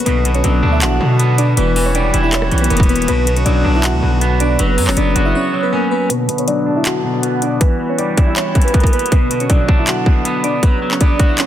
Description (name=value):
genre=hip hop, trap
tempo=159 BPM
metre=4/4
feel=half-time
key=B minor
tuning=A4 = 440 Hz
part: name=glassy digital keys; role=melody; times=0.0-11.5 s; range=A#3 to F#5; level=-19 LUFS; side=equal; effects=chorus, low-pass filter, tape echo
part: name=bright brass ensemble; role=sustained chords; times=0.0-11.5 s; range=C#3 to F#4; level=-25 LUFS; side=left 3 dB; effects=low-pass filter
part: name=trap drum kit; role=drums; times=0.0-11.5 s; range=handclaps, hi-hat, kick drum, rim click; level=-15 LUFS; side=equal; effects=none
part: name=electric guitar at the edge of break-up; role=accompaniment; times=0.1-11.5 s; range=B2 to F#4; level=-19 LUFS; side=right 1 dB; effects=spring reverb, low-pass filter
part: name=distorted 808-style bass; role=bass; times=0.1-5.3 s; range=E1 to B2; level=-16 LUFS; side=equal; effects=distortion
room=light reverb, digital ambience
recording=dense, heavily limited modern master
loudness=-12 LUFS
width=side -11 dB against mid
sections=0.0-6.1 A section; 6.1-11.5 B section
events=drums muted 5.3-6.1; filter sweep 6.1-11.5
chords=0.1 Bm; 1.6 Emadd9; 3.1 Bm; 4.6 F#sus4; 6.1 Bm; 7.6 Emadd9; 9.1 Bm; 10.6 F#sus4